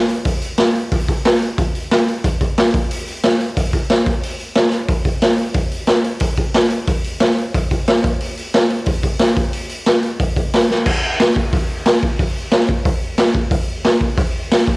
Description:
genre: punk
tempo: 181 BPM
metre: 4/4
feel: straight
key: none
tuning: none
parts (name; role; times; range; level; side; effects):
- raw garage drum kit; drums; 0.1-14.8 s; crash cymbal, hi-hat, kick drum, snare drum; -14 LUFS; equal; cassette tape
room: little or no reverb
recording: home recording on cassette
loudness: -15 LUFS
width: side -29 dB against mid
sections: 0.0-10.9 A section; 10.9-14.8 B section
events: drum fill 10.7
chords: none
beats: | 0.25 0.58 0.91 1.24 | 1.57 1.90 2.23 2.57 | 2.90 3.23 3.56 3.89 | 4.22 4.55 4.89 5.22 | 5.55 5.88 6.21 6.54 | 6.88 7.21 7.54 7.87 | 8.20 8.54 8.87 9.20 | 9.53 9.86 10.19 10.53 | 10.86 11.19 11.52 11.85 | 12.19 12.52 12.85 13.18 | 13.51 13.84 14.18 14.51

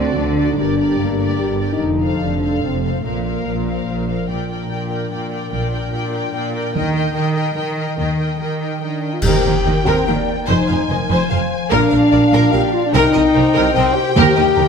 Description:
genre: cinematic, heroic adventure film score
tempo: 146 BPM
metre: 3/4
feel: straight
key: Bb major, Eb major from 9.2 s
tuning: A4 = 440 Hz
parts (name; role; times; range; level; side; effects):
- warm symphonic violin section; melody; 0.0-14.7 s; D5 to Ab5; -26 LUFS; left 3 dB; none
- warm studio violin section; second line; 0.0-14.6 s; G4 to G5; -26 LUFS; left 3 dB; none
- warm symphonic viola section; accompaniment; 0.0-14.7 s; F#4 to C5; -26 LUFS; right 3 dB; none
- warm French horn section; sustained chords; 0.0-4.1, 8.8-14.7 s; A3 to G4; -18 LUFS; left 2 dB; none
- concert harp; arpeggios; 0.0-14.7 s; F2 to Ab5; -26 LUFS; left 10 dB; none
- warm studio cello section; bass; 0.0-14.7 s; Eb2 to Eb3; -23 LUFS; right 4 dB; none
- warm symphonic double bass section; bass; 0.0-14.7 s; F1 to Eb2; -22 LUFS; right 4 dB; none
- mellow hollow small flute group; second line; 9.2-14.7 s; Bb4 to F5; -26 LUFS; left 1 dB; none
- clash cymbals and concert bass drum; percussion; 9.2-10.0 s; none; -23 LUFS; equal; none
- timpani; percussion; 14.2-14.7 s; Eb3; -18 LUFS; right 4 dB; none
room: wet scoring stage reverb, RT60 1.6 s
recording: none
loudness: -15 LUFS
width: side -6 dB against mid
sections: 0.0-4.3 A section; 4.3-9.2 B section; 9.2-14.7 C section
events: band accent 9.2-9.7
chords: 0.0 D; 0.6 Gm; 1.8 F; 3.1 Bbsus2; 4.3 Bb6; 6.7 Eb; 10.5 Fm7; 11.7 Bb; 12.9 Cm7; 14.2 Eb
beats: 0.18 | 0.58 0.99 1.40 | 1.81 2.22 2.63 | 3.05 3.47 3.89 | 4.30 4.71 5.12 | 5.53 5.93 6.34 | 6.75 7.16 7.57 | 7.99 8.41 8.83 | 9.25 9.66 10.07 | 10.49 10.90 11.31 | 11.72 12.13 12.54 | 12.94 13.35 13.76 | 14.17 14.57

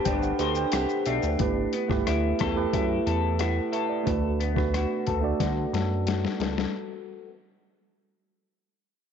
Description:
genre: indie pop, bedroom pop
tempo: 90 BPM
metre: 4/4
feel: straight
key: D mixolydian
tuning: A4 = 445 Hz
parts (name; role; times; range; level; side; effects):
- electric guitar through a small old amp; accompaniment; 0.0-7.3 s; A3 to C5; -30 LUFS; left 10 dB; analog chorus, warbly pitch drift, low-pass filter
- tine electric piano; accompaniment; 0.0-6.8 s; A3 to B5; -28 LUFS; right 10 dB; cassette tape, low-pass filter
- chorused synth bass; bass; 0.1-6.7 s; G1 to D3; -29 LUFS; equal; none
- lo-fi sampler-style drum kit; drums; 0.1-6.7 s; hi-hat, kick drum, rim click, shaker, snare drum; -30 LUFS; left 5 dB; overdrive
- tambourine; percussion; 0.7-0.9 s; none; -45 LUFS; right 15 dB; none
room: light reverb, digital ambience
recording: 1960s-style stereo with parts hard left and right, nothing above 7.6 kHz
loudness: -24 LUFS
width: side -7 dB against mid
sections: 0.0-1.4 A section; 1.4-6.7 B section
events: tine electric piano fill 0.0-1.4; filter sweep 1.4-6.7; drum fill 5.4-6.7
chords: 0.0 Am11; 1.4 G69; 4.1 D6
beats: 0.06 0.73 | 1.40 2.06 2.73 3.40 | 4.06 4.73 5.40 6.06

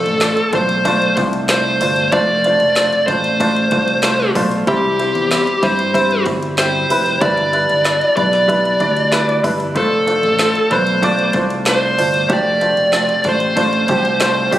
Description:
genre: piano-driven pop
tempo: 94 BPM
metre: 4/4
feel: straight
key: unclear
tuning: A4 = 440 Hz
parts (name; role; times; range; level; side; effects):
- dark smooth lead guitar; melody; 0.0-14.5 s; G4 to D5; -16 LUFS; equal; overdrive, tape echo
- warm upright piano; accompaniment; 0.0-14.6 s; G2 to D5; -18 LUFS; right 1 dB; none
- fingered electric bass; bass; 0.0-14.6 s; F1 to G2; -22 LUFS; left 1 dB; none
- deep house drum kit; drums; 0.1-14.6 s; handclaps, hi-hat, kick drum, ride cymbal, snare drum; -22 LUFS; equal; none
room: light reverb, digital ambience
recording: recorded on a phone in the room, club reverb, compression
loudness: -13 LUFS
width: side -13 dB against mid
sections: 0.0-14.6 A section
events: none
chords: 0.0 F6; 4.7 C; 7.2 G6; 9.8 F6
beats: 0.22 0.85 1.49 | 2.12 2.76 3.40 4.03 | 4.67 5.31 5.94 6.58 | 7.21 7.85 8.49 9.12 | 9.76 10.39 11.03 11.67 | 12.30 12.94 13.57 14.21

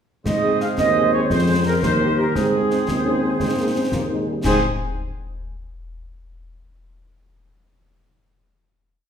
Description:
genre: military-style march for wind band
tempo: 115 BPM (dotted quarters)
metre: 6/8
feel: straight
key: Ab major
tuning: A4 = 440 Hz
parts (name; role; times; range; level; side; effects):
- warm woodwind section; second line; 0.2-4.6 s; G4 to C5; -29 LUFS; equal; none
- dark trumpet section; melody; 0.3-4.6 s; Ab4 to F5; -24 LUFS; right 2 dB; none
- mellow flute section; second line; 0.3-4.6 s; Ab4 to Ab5; -26 LUFS; right 4 dB; none
- mellow trombone section; sustained chords; 0.3-4.6 s; G3 to C4; -27 LUFS; right 1 dB; none
- warm tuba; bass; 0.3-4.6 s; Eb2 to Ab2; -22 LUFS; equal; none
- concert snare drum, clash cymbals and concert bass drum; drums; 0.3-4.6 s; none; -27 LUFS; left 2 dB; none
- mellow French horn section; accompaniment; 0.4-4.6 s; Ab3 to Ab4; -28 LUFS; left 2 dB; none
- warm euphonium; second line; 2.9-4.5 s; G3 to Db4; -27 LUFS; right 1 dB; none
room: wet recital hall reverb, RT60 1.3 s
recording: recorded in a church or concert hall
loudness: -17 LUFS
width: side -8 dB against mid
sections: 0.3-4.4 A section; 4.4-5.5 final chord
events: none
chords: 0.3 Ab; 1.3 Fm; 1.8 Eb; 2.4 Ab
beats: | 0.26 0.78 | 1.30 1.83 | 2.35 2.88 | 3.40 3.92 | 4.45

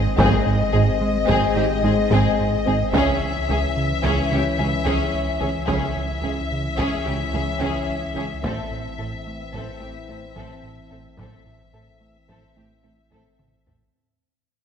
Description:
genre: cinematic, hybrid orchestral and electronic film score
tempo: 109 BPM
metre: 5/4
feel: straight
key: unclear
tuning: A4 = 440 Hz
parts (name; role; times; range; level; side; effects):
- warm symphonic violin section; melody; 0.0-13.7 s; Eb5 to Fb5; -27 LUFS; left 6 dB; none
- soft round pluck; arpeggios; 0.0-13.8 s; Db3 to A4; -32 LUFS; left 1 dB; chorus, ping-pong delay
- round analog bass; riff; 0.0-13.8 s; Db2 to A3; -27 LUFS; right 3 dB; none
- pure sine sub bass; bass; 0.0-13.9 s; Ab1 to Db2; -30 LUFS; equal; none
- warm studio violin section; second line; 0.2-13.7 s; G4 to A4; -28 LUFS; left 4 dB; none
- warm symphonic viola section; accompaniment; 0.2-13.7 s; C4 to Db4; -30 LUFS; right 3 dB; none
- mellow French horn section; sustained chords; 0.2-13.6 s; E3 to Db4; -29 LUFS; left 4 dB; none
- dark symphonic cello section; bass; 0.2-13.7 s; Ab2 to Db3; -30 LUFS; right 3 dB; none
- rich symphonic double bass section; bass; 0.2-13.7 s; Ab1 to Db2; -29 LUFS; right 4 dB; none
- taiko ensemble; drums; 0.2-13.9 s; none; -28 LUFS; equal; none
room: wet scoring stage reverb, RT60 1.9 s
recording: none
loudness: -19 LUFS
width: side -8 dB against mid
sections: 0.0-13.9 A section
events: fade-out 0.2-13.9; drum fill 13.1-13.9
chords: 0.0 Ab; 2.9 Dbm; 8.4 Am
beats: | 0.18 0.73 1.28 1.83 2.38 | 2.93 3.48 4.03 4.58 5.13 | 5.68 6.23 6.78 7.33 7.88 | 8.44 8.99 9.54 10.09 10.64 | 11.19 11.74 12.29 12.84 13.39

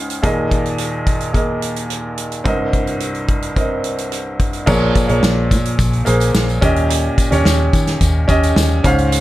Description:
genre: piano-driven pop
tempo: 108 BPM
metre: 4/4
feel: straight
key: unclear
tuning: A4 = 445 Hz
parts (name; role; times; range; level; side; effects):
- felt-muted upright piano; accompaniment; 0.0-9.2 s; C2 to F5; -18 LUFS; equal; plate reverb
- loose indie drum kit; drums; 0.1-9.2 s; crash cymbal, hi-hat, kick drum, snare drum; -19 LUFS; equal; none
- vintage muted fingered electric bass; bass; 4.7-9.2 s; Bb1 to Eb3; -17 LUFS; equal; none
- tambourine; percussion; 4.7-9.2 s; none; -30 LUFS; left 7 dB; none
room: light reverb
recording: none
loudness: -14 LUFS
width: side -15 dB against mid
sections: 0.0-4.7 A section; 4.7-9.2 B section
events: none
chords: 0.2 Ebsus4; 2.5 Cm7; 4.7 Bbm7; 6.6 Eb7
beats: | 0.24 0.79 1.35 1.91 | 2.46 3.02 3.57 4.13 | 4.68 5.24 5.79 6.35 | 6.90 7.46 8.01 8.56 | 9.12

